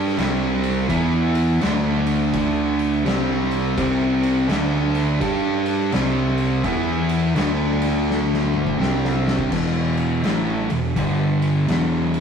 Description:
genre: stoner and doom metal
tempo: 84 BPM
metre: 4/4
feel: swing 63% on 8ths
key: E minor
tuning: A4 = 440 Hz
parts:
  - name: distorted electric guitar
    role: riff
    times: 0.0-9.5 s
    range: C3 to G4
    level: -28 LUFS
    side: equal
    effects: overdrive
  - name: thick fuzz guitar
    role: riff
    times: 0.0-12.2 s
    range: E2 to G4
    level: -23 LUFS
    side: left 4 dB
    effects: distortion
  - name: thick fuzz guitar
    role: riff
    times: 0.0-12.2 s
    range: E2 to G4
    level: -22 LUFS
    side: right 5 dB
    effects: distortion
  - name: growling fingered electric bass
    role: bass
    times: 0.0-12.2 s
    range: E1 to G2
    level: -28 LUFS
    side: left 1 dB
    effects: overdrive
  - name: oversized low-tuned drum kit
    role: drums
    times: 0.1-12.2 s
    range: crash cymbal, kick drum, ride cymbal, snare drum, toms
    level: -26 LUFS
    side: left 1 dB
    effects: none
room: moderate stone room reverb, RT60 1.0 s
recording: rough rehearsal-room recording, warm saturation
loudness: -18 LUFS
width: side -7 dB against mid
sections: 0.0-9.5 A section; 9.5-12.2 B section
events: drum fill 8.1-9.5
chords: 0.2 C5; 0.9 E5; 1.6 D5; 3.1 C5; 4.5 D5; 5.2 G5; 5.9 C5; 6.7 E5; 7.4 D5; 8.8 C5; 9.5 E5; 11.0 G5; 11.7 E5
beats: 0.18 | 0.90 1.62 2.34 3.06 | 3.78 4.50 5.21 5.93 | 6.65 7.37 8.09 8.80 | 9.52 10.24 10.96 11.68

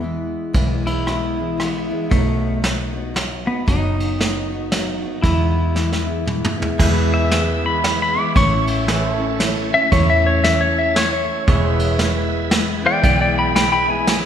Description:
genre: honky-tonk and classic country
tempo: 115 BPM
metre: 3/4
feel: swing 61% on 8ths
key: E major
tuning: A4 = 440 Hz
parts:
  - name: pedal steel guitar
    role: melody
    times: 0.0-14.2 s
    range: A3 to D6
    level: -20 LUFS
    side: left 1 dB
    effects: none
  - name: picked steel-string acoustic guitar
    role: accompaniment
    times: 0.0-14.3 s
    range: E2 to F#4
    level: -24 LUFS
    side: left 2 dB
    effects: none
  - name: vintage muted fingered electric bass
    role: bass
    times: 0.0-14.3 s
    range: E1 to E2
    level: -22 LUFS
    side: equal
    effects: none
  - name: vintage brush drum kit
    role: drums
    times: 0.5-14.2 s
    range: crash cymbal, kick drum, ride cymbal, rim click, snare drum, toms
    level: -21 LUFS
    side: right 1 dB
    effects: none
  - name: bright tonewheel organ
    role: accompaniment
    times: 6.8-14.3 s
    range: G#4 to E5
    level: -29 LUFS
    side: right 4 dB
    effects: slow rotary speaker, overdrive, chorus vibrato
  - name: pedal steel guitar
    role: sustained chords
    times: 6.8-14.3 s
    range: G#4 to E5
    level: -28 LUFS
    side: right 5 dB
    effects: none
room: moderate concert hall reverb, RT60 2.0 s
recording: minimal, uncompressed stereo recording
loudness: -16 LUFS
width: side -9 dB against mid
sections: 0.0-6.8 A section; 6.8-14.3 B section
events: drum fill 5.8-6.8; pedal steel guitar solo 6.8-14.3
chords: 0.0 E; 2.1 B; 5.2 E; 8.4 A; 11.5 E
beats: 0.02 | 0.55 1.07 1.59 | 2.11 2.63 3.15 | 3.67 4.20 4.72 | 5.24 5.76 6.28 | 6.80 7.32 7.84 | 8.36 8.88 9.40 | 9.92 10.44 10.96 | 11.48 12.00 12.52 | 13.04 13.56 14.08

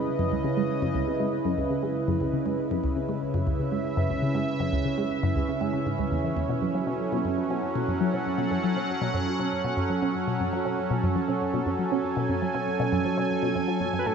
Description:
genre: ambient, sequencer-driven space music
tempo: 119 BPM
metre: 4/4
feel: straight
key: F# dorian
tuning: A4 = 439 Hz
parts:
  - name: sweeping resonant pad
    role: sustained chords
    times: 0.0-14.1 s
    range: C#3 to G#5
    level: -26 LUFS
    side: right 2 dB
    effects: chorus
  - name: concert harp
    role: arpeggios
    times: 0.0-1.4 s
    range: none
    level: barely audible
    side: none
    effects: none
  - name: resonant blip pluck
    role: riff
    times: 0.2-14.1 s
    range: C#2 to C#4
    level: -28 LUFS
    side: left 1 dB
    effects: chorus, phaser, analog delay
  - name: pulse-width lead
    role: melody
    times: 14.0-14.1 s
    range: A4 to B4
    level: -28 LUFS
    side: left 2 dB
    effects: chorus
room: wet huge ambient reverb, RT60 8.2 s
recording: dreamy mix soaked in reverb, cassette tape, nothing above 7.8 kHz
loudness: -24 LUFS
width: side -6 dB against mid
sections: 0.0-14.1 A section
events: none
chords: 0.0 C#m7; 6.5 F#madd9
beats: | 0.44 0.95 1.45 1.96 | 2.46 2.96 3.47 3.97 | 4.48 4.98 5.49 5.99 | 6.49 7.00 7.50 8.01 | 8.51 9.02 9.52 10.02 | 10.53 11.03 11.54 12.04 | 12.54 13.05 13.55 14.06

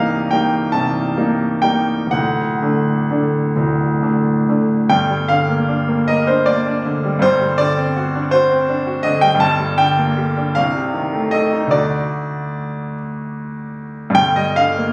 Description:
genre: classical, romantic nocturne for solo piano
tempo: 39-56 BPM (dotted quarters)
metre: 6/8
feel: rubato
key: G minor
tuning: A4 = 440 Hz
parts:
  - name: clear concert grand piano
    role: solo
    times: 0.0-14.9 s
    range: C1 to A5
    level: -18 LUFS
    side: equal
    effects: none
room: wet recital hall reverb, RT60 1.5 s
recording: recorded on a phone in the room, studio reverb, compression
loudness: -17 LUFS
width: mono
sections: 0.0-4.9 A section; 4.9-14.9 B section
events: none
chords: 0.0 Cm7; 2.1 D; 4.9 Gm; 7.2 D7/G; 9.4 Gm; 10.6 Adim/C; 11.7 D; 14.2 Gm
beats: 0.72 | 2.11 3.55 | 4.90 6.07 | 7.22 8.32 | 9.41 10.55 | 11.73 12.95 | 14.16

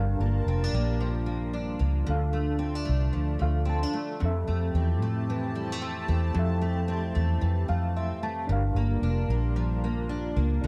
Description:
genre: indie pop, bedroom pop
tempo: 112 BPM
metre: 4/4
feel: swing 60% on 16ths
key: unclear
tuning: A4 = 440 Hz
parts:
  - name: picked steel-string acoustic guitar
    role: accompaniment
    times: 0.0-10.7 s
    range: F2 to D4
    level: -35 LUFS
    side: equal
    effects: analog chorus, warbly pitch drift
  - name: reed electric piano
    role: accompaniment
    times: 0.0-10.7 s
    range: F3 to A5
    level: -38 LUFS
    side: equal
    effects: fast tremolo, cassette tape
  - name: lush unison pad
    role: sustained chords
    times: 0.0-10.7 s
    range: G3 to A5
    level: -39 LUFS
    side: equal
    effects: chorus, tremolo
  - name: vintage muted fingered electric bass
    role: bass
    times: 0.0-10.7 s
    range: F1 to A2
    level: -29 LUFS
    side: equal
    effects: none
room: light reverb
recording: none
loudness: -28 LUFS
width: mono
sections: 0.0-10.7 A section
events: reed electric piano fill 3.1-4.2, 7.4-8.5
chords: 0.0 Gm7; 2.1 Dm; 4.2 Fmaj7; 8.5 Gm7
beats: 0.47 1.00 1.54 | 2.07 2.61 3.14 3.68 | 4.21 4.75 5.28 5.82 | 6.35 6.88 7.42 7.95 | 8.49 9.02 9.56 10.09 | 10.63

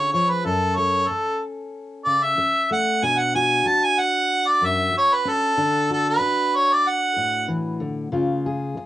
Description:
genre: acoustic folk duo or small band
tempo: 94 BPM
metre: 4/4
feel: straight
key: F# minor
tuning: A4 = 440 Hz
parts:
  - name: warm harmonica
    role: melody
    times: 0.0-7.5 s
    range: A4 to A5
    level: -19 LUFS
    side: right 1 dB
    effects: cassette tape
  - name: fingerpicked steel-string acoustic guitar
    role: accompaniment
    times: 0.0-8.9 s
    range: F#2 to A4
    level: -26 LUFS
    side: left 2 dB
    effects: cassette tape
room: moderate small room ambience, RT60 0.5 s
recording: home recording on cassette, nothing above 11.0 kHz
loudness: -18 LUFS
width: side -14 dB against mid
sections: 0.0-8.9 A section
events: harmonica solo 0.0-8.9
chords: 0.5 F#m; 3.0 Bm; 5.6 D; 8.1 C#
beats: | 0.46 1.10 1.74 2.38 | 3.02 3.66 4.30 4.94 | 5.58 6.22 6.86 7.50 | 8.14 8.78

